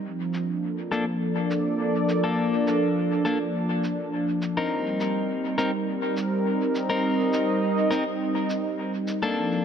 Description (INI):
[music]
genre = ambient dub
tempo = 103 BPM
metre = 4/4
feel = swing 53% on 16ths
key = C dorian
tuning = A4 = 440 Hz
[part]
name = warm analog pad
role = sustained chords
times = 0.0-9.6 s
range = F3 to Eb5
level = -24 LUFS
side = right 1 dB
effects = chorus
[part]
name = cabasa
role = drums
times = 0.3-9.2 s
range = none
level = -43 LUFS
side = equal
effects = low-pass filter on perc, dub echo
[part]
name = clean electric guitar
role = stabs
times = 0.9-9.6 s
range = Bb3 to Bb4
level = -28 LUFS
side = left 3 dB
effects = low-pass filter, dub echo
[sound]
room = light reverb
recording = echo-heavy mix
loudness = -23 LUFS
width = side -8 dB against mid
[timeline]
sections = 0.0-9.6 A section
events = none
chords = 0.0 Bbmaj7; 4.7 Cm7